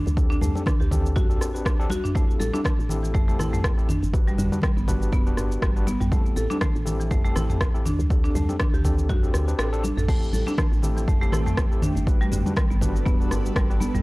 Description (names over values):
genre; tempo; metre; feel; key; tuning
afro house; 121 BPM; 4/4; swing 56% on 16ths; A dorian; A4 = 440 Hz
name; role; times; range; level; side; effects
buzzing marimba with medium hard mallets; arpeggios; 0.0-14.0 s; D3 to A4; -30 LUFS; right 1 dB; sidechain pumping, tape echo
woody FM bass; bass; 0.1-14.0 s; D1 to D2; -27 LUFS; equal; sidechain pumping
deep house drum kit; drums; 0.1-14.0 s; cabasa, crash cymbal, rim click, toms; -30 LUFS; equal; none
congas; percussion; 0.1-13.9 s; none; -32 LUFS; left 1 dB; none
overdriven tine electric piano; stabs; 0.2-13.8 s; C4 to B4; -33 LUFS; left 2 dB; fast tremolo, sidechain pumping, tape echo
electronic kick drum; drums; 0.2-13.7 s; none; -23 LUFS; equal; none
ethereal airy pad; sustained chords; 10.8-14.0 s; G3 to B4; -33 LUFS; right 1 dB; ensemble chorus, built-in reverb, phaser, sidechain pumping
room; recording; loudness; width
little or no reverb; dry, gritty hardware recording, cassette tape; -20 LUFS; side -22 dB against mid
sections
0.0-14.0 A section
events
kick drops out 9.6-10.1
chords
0.2 D7sus4; 2.2 Am7; 4.1 Gmaj7; 6.1 Am7; 8.1 D7sus4; 10.1 Am7; 12.1 Gmaj7